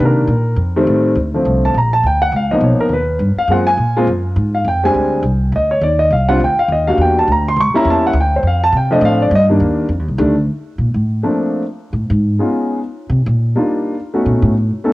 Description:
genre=jazz piano trio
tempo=206 BPM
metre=4/4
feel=swing 60% on 8ths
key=Bb major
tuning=A4 = 440 Hz
part: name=warm concert grand piano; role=melody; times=0.0-14.9 s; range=D3 to C#6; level=-14 LUFS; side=equal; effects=cassette tape
part: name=upright bass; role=bass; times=0.0-14.7 s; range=Bb1 to C3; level=-16 LUFS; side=equal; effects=none
room=light reverb, small room ambience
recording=home recording on cassette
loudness=-12 LUFS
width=side -18 dB against mid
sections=0.0-1.2 A section; 1.2-10.5 A section; 10.5-14.9 A section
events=grand piano solo 0.0-10.5; upright bass solo 10.5-14.9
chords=0.0 Cm7; 0.6 F7; 1.2 Bbmaj9; 2.3 Db13; 3.5 Gbmaj9#11; 4.7 Fm69; 5.8 Ebmaj13; 7.0 Em7b5; 7.6 C#dim7; 8.1 Dm7; 9.3 Ebmaj7; 9.9 F13; 10.5 Bbmaj9; 11.6 N.C.; 12.2 Db9; 12.8 Cm11; 14.0 B9

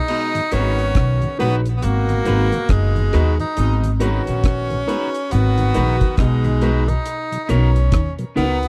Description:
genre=roots reggae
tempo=69 BPM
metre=4/4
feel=swing 60% on 16ths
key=G# minor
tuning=A4 = 444 Hz
part: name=edgy tenor saxophone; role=melody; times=0.0-8.7 s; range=G#3 to D#4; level=-26 LUFS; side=equal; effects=tape echo
part: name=warm horn section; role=second line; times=0.1-6.8 s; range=B2 to F#4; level=-29 LUFS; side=equal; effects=tape echo
part: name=deep reggae drum kit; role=drums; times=0.1-8.7 s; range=crash cymbal, hi-hat, kick drum, rim click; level=-22 LUFS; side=equal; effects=none
part: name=mellow tonewheel organ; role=accompaniment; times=0.3-8.5 s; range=G#2 to F#4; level=-28 LUFS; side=equal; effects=chorus vibrato, slow rotary speaker
part: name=electric guitar at the edge of break-up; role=accompaniment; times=0.5-8.6 s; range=B3 to B4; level=-32 LUFS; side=equal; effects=tape echo
part: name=dark upright piano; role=stabs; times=0.5-8.6 s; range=D#4 to B4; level=-29 LUFS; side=equal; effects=none
part: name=upright bass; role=bass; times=0.5-8.7 s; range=F#1 to D#2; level=-21 LUFS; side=equal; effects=none
part: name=electric guitar at the edge of break-up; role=riff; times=7.5-8.6 s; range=B2 to D#3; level=-26 LUFS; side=equal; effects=none
room=little or no reverb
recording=dry, close 1970s-style studio recording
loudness=-18 LUFS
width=mono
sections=0.1-8.7 A section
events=none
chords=0.1 G#m7; 7.1 Bmaj7

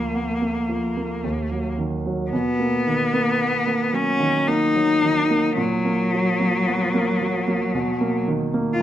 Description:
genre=classical, romantic duo for cello and grand piano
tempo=55 BPM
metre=3/4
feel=rubato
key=unclear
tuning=A4 = 437 Hz
part: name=clear cello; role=melody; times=0.0-8.8 s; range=Gb3 to F4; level=-22 LUFS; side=left 2 dB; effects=none
part: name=warm grand piano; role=accompaniment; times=0.0-8.8 s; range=D2 to Cb4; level=-23 LUFS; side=right 2 dB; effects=none
room=moderate recital hall reverb, RT60 1.4 s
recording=close, detailed microphones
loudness=-19 LUFS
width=side -12 dB against mid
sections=0.0-8.8 A section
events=none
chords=0.0 Bb/D; 1.2 Ebm; 2.3 Bmaj7; 5.6 Gb/Bb; 7.7 Bmaj7

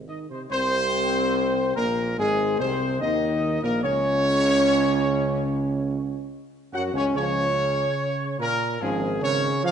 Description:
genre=classical, ceremonial fanfare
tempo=72 BPM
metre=4/4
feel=straight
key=Ab mixolydian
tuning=A4 = 441 Hz
part: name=dark trombone section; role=sustained chords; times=0.0-9.7 s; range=Ab2 to Gb3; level=-30 LUFS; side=right 2 dB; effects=none
part: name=warm tuba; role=bass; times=0.0-9.5 s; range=Ab1 to Gb2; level=-28 LUFS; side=right 4 dB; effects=none
part: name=mellow trumpet section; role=melody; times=0.1-9.7 s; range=Ab4 to Gb5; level=-24 LUFS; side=equal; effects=none
part: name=mellow French horn section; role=sustained chords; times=0.5-9.1 s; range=F3 to Gb4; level=-27 LUFS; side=left 2 dB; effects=none
room=wet scoring stage reverb, RT60 1.7 s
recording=nothing above 10.7 kHz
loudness=-21 LUFS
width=side -8 dB against mid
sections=0.5-9.7 A section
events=none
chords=0.0 Ab; 0.5 Abadd9; 3.8 Gb5/Db; 7.2 Db

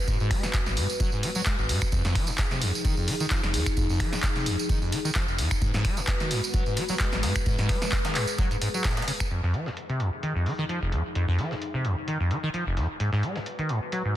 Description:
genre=acid house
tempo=130 BPM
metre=4/4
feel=swing 54% on 16ths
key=F minor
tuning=A4 = 440 Hz
part: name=dark analog pad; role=sustained chords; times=0.0-14.2 s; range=F3 to Cb5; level=-34 LUFS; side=left 1 dB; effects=chorus, phaser, sidechain pumping
part: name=acid bass, saw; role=riff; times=0.1-14.2 s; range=F1 to Ab3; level=-28 LUFS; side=equal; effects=lush chorus, cassette tape, sidechain pumping, ping-pong delay
part: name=breakbeat sampler-style drum kit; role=drums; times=0.1-14.0 s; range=hi-hat, snare drum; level=-40 LUFS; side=equal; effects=sidechain pumping on hats, high-pass filter on hats, low-pass filter on hats, high-pass filter on snare, low-pass filter on snare
part: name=electronic kick drum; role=drums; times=0.1-9.3 s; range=none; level=-27 LUFS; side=equal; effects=none
part: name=tambourine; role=percussion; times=0.1-9.3 s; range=none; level=-36 LUFS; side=right 5 dB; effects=none
part: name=punchy analog drum machine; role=drums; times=0.3-9.4 s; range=crash cymbal, finger snaps, handclaps, hi-hat, snare drum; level=-31 LUFS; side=equal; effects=low-pass filter on cymbals, low-pass filter on snare, low-pass filter on hats, low-pass filter on room
room=light reverb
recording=dense, heavily limited modern master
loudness=-24 LUFS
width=side -13 dB against mid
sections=0.0-9.3 A section; 9.3-14.2 B section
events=drop 0.0-9.3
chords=0.0 Abm7; 1.9 Fm7; 5.6 Abm7; 9.3 Fm7; 13.0 Abm7

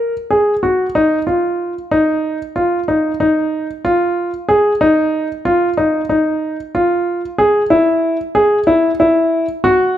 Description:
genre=contemporary instrumental, contemporary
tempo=186 BPM (eighths)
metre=9/8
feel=straight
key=unclear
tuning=A4 = 440 Hz
part: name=warm concert grand piano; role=solo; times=0.0-10.0 s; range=Eb4 to Bb4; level=-13 LUFS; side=equal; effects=none
room=light reverb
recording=dark, warm production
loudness=-13 LUFS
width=side -11 dB against mid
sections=0.0-1.9 A section; 1.9-10.0 B section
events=none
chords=none

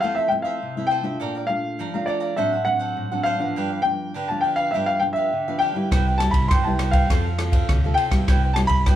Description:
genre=samba and choro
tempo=102 BPM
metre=4/4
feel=straight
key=C major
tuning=A4 = 436 Hz
part: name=warm grand piano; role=melody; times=0.0-9.0 s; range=D5 to C6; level=-23 LUFS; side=left 1 dB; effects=plate reverb
part: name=cavaquinho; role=accompaniment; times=0.0-9.0 s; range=D4 to Bb5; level=-29 LUFS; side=right 5 dB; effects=none
part: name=nylon-string guitar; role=accompaniment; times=0.0-9.0 s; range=G2 to A4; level=-27 LUFS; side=left 1 dB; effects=none
part: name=hollow-body short-scale fingered electric bass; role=bass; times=5.9-9.0 s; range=C2 to G2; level=-23 LUFS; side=equal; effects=none
part: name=open jazz drum kit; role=drums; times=5.9-9.0 s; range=kick drum, ride cymbal, rim click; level=-20 LUFS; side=equal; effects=none
room=wet small room reverb, RT60 0.5 s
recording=heard from further back in the room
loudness=-19 LUFS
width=side -12 dB against mid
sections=0.0-9.0 A section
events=none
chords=0.0 Fmaj7; 1.2 Bbmaj7; 2.4 D7/A; 3.6 G7; 5.9 Cmaj7; 7.1 F; 8.3 Cmaj7

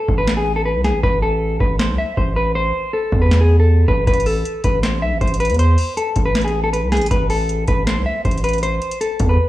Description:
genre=hip hop, trap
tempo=158 BPM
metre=4/4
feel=half-time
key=A harmonic minor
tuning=A4 = 439 Hz
part: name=clean electric guitar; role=melody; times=0.0-9.5 s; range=G#4 to E5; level=-20 LUFS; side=left 1 dB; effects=none
part: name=distorted 808-style bass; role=bass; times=0.1-9.4 s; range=A1 to E2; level=-17 LUFS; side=equal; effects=distortion
part: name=booming analog drum machine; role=drums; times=0.1-9.4 s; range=handclaps, hi-hat, kick drum, snare drum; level=-21 LUFS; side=equal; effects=none
room=little or no reverb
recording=small room reverb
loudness=-15 LUFS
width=side -15 dB against mid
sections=0.0-9.5 A section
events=break 0.0-4.1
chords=0.0 Amadd9; 1.0 Am; 4.1 Amadd9; 7.1 Am

